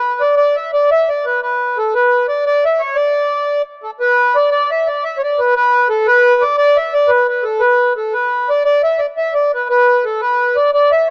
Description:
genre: celtic folk.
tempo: 116 BPM (dotted quarters).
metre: 6/8.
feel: straight.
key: unclear.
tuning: A4 = 437 Hz.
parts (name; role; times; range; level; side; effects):
accordion; solo; 0.0-11.1 s; A4 to E5; -14 LUFS; equal; none.
room: light reverb, small room ambience.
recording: rough home demo mix, AM radio sound.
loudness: -14 LUFS.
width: mono.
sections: 0.0-4.0 A section; 4.0-11.1 A section.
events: none.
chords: none.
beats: 0.37 | 0.89 1.41 | 1.93 2.44 | 2.96 3.48 | 4.00 4.52 | 5.04 5.55 | 6.07 6.58 | 7.10 7.62 | 8.13 8.65 | 9.16 9.68 | 10.20 10.71.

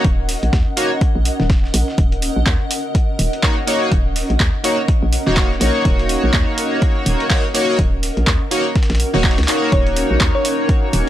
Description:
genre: deep house.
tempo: 124 BPM.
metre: 4/4.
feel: swing 59% on 16ths.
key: Eb minor.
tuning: A4 = 441 Hz.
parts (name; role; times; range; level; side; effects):
chorused polysynth; stabs; 0.0-11.1 s; Bb3 to Db5; -20 LUFS; equal; sidechain pumping, analog delay.
hollow knocking FM bass; bass; 0.0-11.0 s; Eb1 to Eb2; -19 LUFS; equal; tube saturation, sidechain pumping.
dusty soul sampler-style drum kit; drums; 0.0-11.1 s; hi-hat, snare drum; -31 LUFS; left 1 dB; high-pass filter on hats, high-pass filter on snare.
electronic kick drum; drums; 0.0-10.8 s; none; -16 LUFS; equal; overdrive.
granular cloud pad; texture; 0.0-11.1 s; Db4 to Ab5; -25 LUFS; equal; built-in reverb, sidechain pumping.
punchy analog drum machine; drums; 0.3-11.0 s; handclaps, hi-hat; -22 LUFS; right 1 dB; none.
thumb-piano-like synth pluck; melody; 9.7-11.0 s; Db5; -23 LUFS; equal; chorus, tape echo.
room: little or no reverb.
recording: dry, gritty hardware recording.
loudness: -14 LUFS.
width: side -12 dB against mid.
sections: 0.0-11.1 A section.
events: drum fill 9.5.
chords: 0.0 Ebm7.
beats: | 0.05 0.53 1.01 1.50 | 1.98 2.46 2.95 3.43 | 3.92 4.40 4.88 5.37 | 5.85 6.34 6.82 7.30 | 7.79 8.27 8.76 9.24 | 9.72 10.21 10.69.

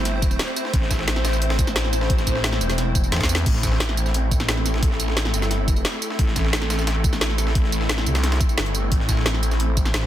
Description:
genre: dark technical drum and bass.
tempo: 176 BPM.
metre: 4/4.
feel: straight.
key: A minor.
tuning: A4 = 440 Hz.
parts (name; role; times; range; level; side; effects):
swarming drone; sustained chords; 0.0-10.1 s; A3 to C5; -28 LUFS; equal; built-in reverb, sidechain pumping.
phased detuned saw bass; bass; 0.0-10.1 s; E1 to A1; -23 LUFS; equal; phaser, overdrive.
breakbeat sampler-style drum kit; drums; 0.1-10.0 s; hi-hat, snare drum; -31 LUFS; left 1 dB; high-pass filter on hats, high-pass filter on snare, high-pass filter on room.
drum and bass drum kit; drums; 0.1-10.1 s; crash cymbal, hi-hat, snare drum, tambourine; -25 LUFS; equal; overdrive.
electronic kick drum; drums; 0.2-9.8 s; none; -21 LUFS; equal; overdrive.
growling FM bass; bass; 3.1-3.4, 8.1-8.4 s; C2 to E2; -21 LUFS; equal; none.
room: light reverb, digital ambience.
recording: dense, heavily limited modern master.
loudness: -19 LUFS.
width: side -12 dB against mid.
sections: 0.0-10.1 A section.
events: drum fill 3.1-3.5.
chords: 0.0 Am.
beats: 0.05 0.39 | 0.73 1.08 1.42 1.76 | 2.10 2.44 2.78 3.12 | 3.46 3.80 4.14 4.49 | 4.83 5.17 5.51 5.85 | 6.19 6.53 6.87 7.21 | 7.55 7.89 8.23 8.58 | 8.92 9.26 9.60 9.94.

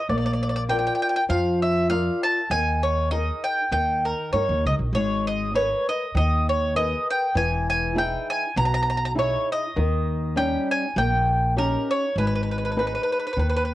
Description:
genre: italian folk, Italian serenade.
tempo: 99 BPM.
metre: 4/4.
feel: swing 55% on 8ths.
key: G# harmonic minor.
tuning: A4 = 440 Hz.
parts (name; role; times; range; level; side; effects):
bowl-back mandolin; melody; 0.0-13.7 s; A#4 to A#5; -24 LUFS; equal; none.
flamenco guitar; accompaniment; 0.1-13.7 s; B2 to D5; -27 LUFS; left 2 dB; cassette tape.
upright bass; bass; 0.1-13.7 s; E1 to G2; -25 LUFS; equal; transformer saturation.
room: light reverb.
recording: home recording on cassette.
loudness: -21 LUFS.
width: side -15 dB against mid.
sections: 0.0-13.7 A section.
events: none.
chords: 0.1 A#; 2.5 D#sus4; 3.7 D#; 4.9 G#madd9; 7.4 Emaj7; 9.8 D#7; 12.2 G#m.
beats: | 0.09 0.69 1.30 1.91 | 2.51 3.12 3.73 4.33 | 4.94 5.55 6.15 6.76 | 7.36 7.96 8.56 9.16 | 9.76 10.36 10.96 11.56 | 12.17 12.77 13.38.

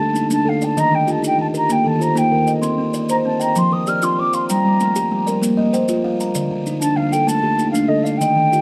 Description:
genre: southern african traditional, mbira-style interlocking cycle.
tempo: 129 BPM (dotted quarters).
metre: 12/8.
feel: straight.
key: unclear.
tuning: A4 = 440 Hz.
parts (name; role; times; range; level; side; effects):
mellow wooden flute; melody; 0.0-8.6 s; Eb5 to F6; -21 LUFS; equal; plate reverb.
buzzing kalimba; arpeggios; 0.0-8.6 s; D3 to G5; -26 LUFS; equal; none.
kalimba; arpeggios; 0.0-8.6 s; D3 to C6; -21 LUFS; equal; none.
maracas; percussion; 0.2-8.6 s; none; -33 LUFS; equal; none.
room: moderate studio reverb, RT60 0.6 s.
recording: dark, warm production.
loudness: -18 LUFS.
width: mono.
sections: 0.0-8.6 A section.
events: none.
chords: 0.0 Dm; 0.8 Eb; 2.6 Cm; 3.6 F5; 4.5 Gm; 5.4 Bb; 6.4 Dm.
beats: 0.30 | 0.77 1.23 1.70 2.16 | 2.63 3.10 3.56 4.03 | 4.49 4.96 5.42 5.89 | 6.35 6.82 7.28 7.75 | 8.21.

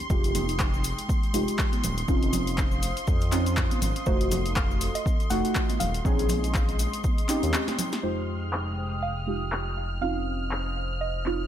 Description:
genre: deep house.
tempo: 121 BPM.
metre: 4/4.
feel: swing 57% on 16ths.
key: F minor.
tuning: A4 = 442 Hz.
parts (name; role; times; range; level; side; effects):
deep mellow chord stab; stabs; 0.0-11.5 s; Ab3 to Ab4; -30 LUFS; right 2 dB; chorus, sidechain pumping, tape echo.
soft string machine; texture; 0.0-11.5 s; C6 to F6; -37 LUFS; equal; ensemble chorus, sidechain pumping.
dark analog pad; sustained chords; 0.1-11.5 s; Ab3 to Eb6; -38 LUFS; left 2 dB; chorus, sidechain pumping.
smooth synth bass; bass; 0.1-11.5 s; Eb1 to F2; -30 LUFS; equal; sidechain pumping.
electronic kick drum; drums; 0.1-7.2 s; none; -26 LUFS; equal; none.
cabasa; percussion; 0.1-8.0 s; none; -39 LUFS; left 5 dB; none.
punchy analog drum machine; drums; 0.2-11.4 s; crash cymbal, handclaps, hi-hat, snare drum; -33 LUFS; left 1 dB; overdrive, low-pass filter on hats, low-pass filter on snare, low-pass filter on cymbals.
congas; percussion; 0.3-7.9 s; none; -35 LUFS; right 3 dB; none.
soft round pluck; melody; 4.1-11.5 s; C5 to Gb5; -36 LUFS; right 1 dB; chorus, tape echo.
room: little or no reverb.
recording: none.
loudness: -24 LUFS.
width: side -10 dB against mid.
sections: 0.0-8.0 A section; 8.0-11.5 B section.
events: break 7.5-8.0; drum fill 7.7-8.0; filter sweep on synth stab 8.0-11.5.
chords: 0.1 Fm9; 2.1 Dbmaj9/F; 4.1 F7b9; 6.1 Bbm11; 8.0 Fm9; 10.0 Dbmaj9/F.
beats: | 0.10 0.60 1.09 1.59 | 2.08 2.58 3.08 3.57 | 4.07 4.56 5.06 5.55 | 6.05 6.55 7.04 7.54 | 8.03 8.53 9.03 9.52 | 10.02 10.51 11.01.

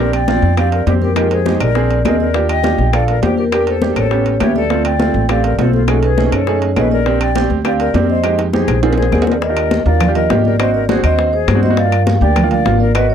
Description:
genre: Afro-Cuban jazz.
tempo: 204 BPM.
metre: 4/4.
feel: straight.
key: Bb major, Eb major from 9.4 s.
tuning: A4 = 441 Hz.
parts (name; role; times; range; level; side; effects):
vibraphone with soft mallets; melody; 0.0-13.1 s; A4 to G5; -19 LUFS; right 1 dB; none.
breathy silver concert flute; second line; 0.0-13.1 s; F4 to Eb5; -22 LUFS; left 17 dB; none.
clear upright piano; accompaniment; 0.0-13.1 s; Ab3 to Bb4; -19 LUFS; right 12 dB; none.
upright bass; bass; 0.0-13.1 s; Ab1 to G2; -16 LUFS; left 1 dB; none.
claves; percussion; 0.1-13.1 s; none; -28 LUFS; left 31 dB; none.
congas; percussion; 0.1-13.1 s; none; -20 LUFS; left 4 dB; none.
timbales; percussion; 0.1-13.1 s; none; -25 LUFS; right 7 dB; none.
bongos; percussion; 0.3-13.1 s; none; -25 LUFS; left 11 dB; none.
room: little or no reverb.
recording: dry, close 1970s-style studio recording.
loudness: -12 LUFS.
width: side -8 dB against mid.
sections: 0.0-9.4 A section; 9.4-13.1 B section.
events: drum fill 8.2-9.4.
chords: 0.0 Bb6; 1.2 Fm7; 1.8 Bb7; 2.3 Ebmaj7; 3.5 Em7b5; 4.1 A7; 4.7 Dm7; 5.9 B13; 7.1 Bb6; 8.2 Fm7; 8.8 Bb9; 9.4 Ebmaj9; 10.6 Ab7#11; 11.8 Gm7.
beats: 0.28 0.58 0.87 | 1.17 1.46 1.76 2.05 | 2.35 2.64 2.94 3.23 | 3.52 3.82 4.11 4.41 | 4.70 5.00 5.29 5.59 | 5.88 6.18 6.47 6.77 | 7.06 7.36 7.65 7.95 | 8.24 8.53 8.83 9.12 | 9.42 9.71 10.01 10.30 | 10.59 10.89 11.18 11.48 | 11.77 12.07 12.36 12.65 | 12.95.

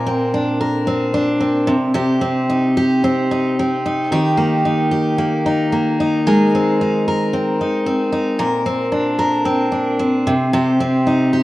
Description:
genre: pop.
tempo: 112 BPM.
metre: 4/4.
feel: swing 55% on 16ths.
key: Eb major.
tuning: A4 = 439 Hz.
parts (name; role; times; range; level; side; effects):
picked steel-string acoustic guitar; solo; 0.0-11.4 s; Bb2 to Bb4; -15 LUFS; equal; none.
room: moderate plate reverb, RT60 2.8 s.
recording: worn, warbling old tape, cassette tape, warbly pitch drift.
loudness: -15 LUFS.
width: side -17 dB against mid.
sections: 0.0-11.4 A section.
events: none.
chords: 0.0 Bbadd9; 1.7 Cm; 4.1 Eb; 6.3 Abadd9; 8.4 Bbadd9; 10.3 Cm.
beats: 0.35 0.89 1.42 | 1.96 2.50 3.04 3.57 | 4.11 4.64 5.18 5.72 | 6.25 6.79 7.33 7.86 | 8.40 8.93 9.47 10.01 | 10.54 11.08.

